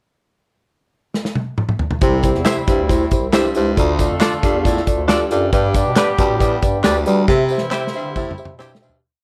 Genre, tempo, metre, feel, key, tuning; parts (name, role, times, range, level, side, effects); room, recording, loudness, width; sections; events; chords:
uptempo 1960s-style soul; 137 BPM; 4/4; straight; C major; A4 = 440 Hz
natural country drum kit; drums; 1.1-9.0 s; hi-hat, kick drum, snare drum, toms; -22 LUFS; equal
warm horn section; second line; 2.0-8.8 s; E3 to C5; -28 LUFS; equal
mellow reed electric piano; accompaniment; 2.0-9.0 s; G2 to E5; -22 LUFS; equal
bright baritone saxophone; riff; 2.0-9.0 s; D2 to C3; -25 LUFS; equal
mellow bass clarinet; bass; 2.0-9.0 s; C2 to G3; -24 LUFS; equal
tambourine and handclaps; percussion; 2.2-8.9 s; -34 LUFS; equal
direct-recorded clean electric guitar; stabs; 2.5-8.7 s; C4 to E5; -25 LUFS; equal; spring reverb
light reverb; -17 LUFS; mono
0.3-2.0 pickup bar; 2.0-9.0 A section
drum fill 1.1-2.0, 7.3-9.0; fade-out 7.3-9.0
0.3 N.C.; 2.0 C; 3.8 Dm; 5.5 G; 7.3 C